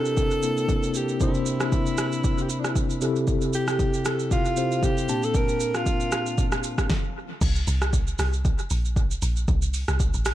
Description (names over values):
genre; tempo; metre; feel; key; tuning
amapiano; 116 BPM; 4/4; swing 55% on 16ths; unclear; A4 = 440 Hz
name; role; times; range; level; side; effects
breathy alto saxophone; melody; 0.0-6.5 s; D4 to Bb4; -28 LUFS; right 1 dB; dub echo
mellow tine electric piano; accompaniment; 0.0-6.9 s; Bb2 to A5; -26 LUFS; left 2 dB; medium stereo tremolo, dub echo
deep house drum kit; drums; 0.1-10.3 s; crash cymbal, hi-hat, kick drum, rim click, shaker, snare drum; -25 LUFS; equal; vintage 12-bit sampler grit
deep log drum bass; bass; 7.4-10.3 s; A1 to C2; -24 LUFS; equal; none
room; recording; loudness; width
little or no reverb; echo-heavy mix; -22 LUFS; side -13 dB against mid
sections
0.0-7.4 A section; 7.4-10.3 B section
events
stop 6.9-7.4; drop 7.4-10.3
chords
0.0 C7; 3.0 Fmaj7/C; 5.1 Bbmaj7; 7.4 N.C.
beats
0.17 0.69 | 1.21 1.72 2.24 2.76 | 3.28 3.79 4.31 4.83 | 5.34 5.86 6.38 6.90 | 7.41 7.93 8.45 8.96 | 9.48 10.00